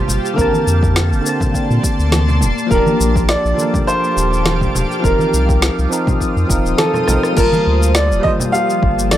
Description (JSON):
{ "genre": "sunset chillout", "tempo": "103 BPM", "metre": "4/4", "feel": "swing 54% on 16ths", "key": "G minor", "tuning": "A4 = 438 Hz", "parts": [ { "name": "clear grand piano", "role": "melody", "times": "0.0-9.2 s", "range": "A4 to F5", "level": "-19 LUFS", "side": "equal", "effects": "tape echo" }, { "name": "bell-like tine electric piano", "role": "accompaniment", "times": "0.0-9.2 s", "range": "D3 to A5", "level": "-21 LUFS", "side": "equal", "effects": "auto-pan, tape echo" }, { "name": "shimmering ambient pad", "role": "sustained chords", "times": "0.0-9.2 s", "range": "F3 to Eb6", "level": "-22 LUFS", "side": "equal", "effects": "chorus, built-in reverb, phaser" }, { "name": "warm sub bass", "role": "bass", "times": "0.1-9.2 s", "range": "D1 to Bb2", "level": "-16 LUFS", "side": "equal", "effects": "none" }, { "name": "deep house drum kit", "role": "drums", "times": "0.1-9.2 s", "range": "crash cymbal, rim click, shaker, snare drum", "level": "-21 LUFS", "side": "left 1 dB", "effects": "none" }, { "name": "congas", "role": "percussion", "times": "0.1-9.2 s", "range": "none", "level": "-22 LUFS", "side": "right 2 dB", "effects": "none" }, { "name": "electronic kick drum", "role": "drums", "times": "0.4-9.0 s", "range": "none", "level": "-19 LUFS", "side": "equal", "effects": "none" }, { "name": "soft round pluck", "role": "arpeggios", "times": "7.4-9.2 s", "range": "F4 to A4", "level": "-28 LUFS", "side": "left 3 dB", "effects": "none" } ], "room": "little or no reverb", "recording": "dry, gritty hardware recording", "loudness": "-13 LUFS", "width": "side -12 dB against mid", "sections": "0.0-7.4 A section; 7.4-9.2 B section", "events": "drum fill 6.9-7.4", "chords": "0.4 Bbmaj9; 2.4 Ebmaj9#11; 5.0 F7sus4; 7.4 Gm9" }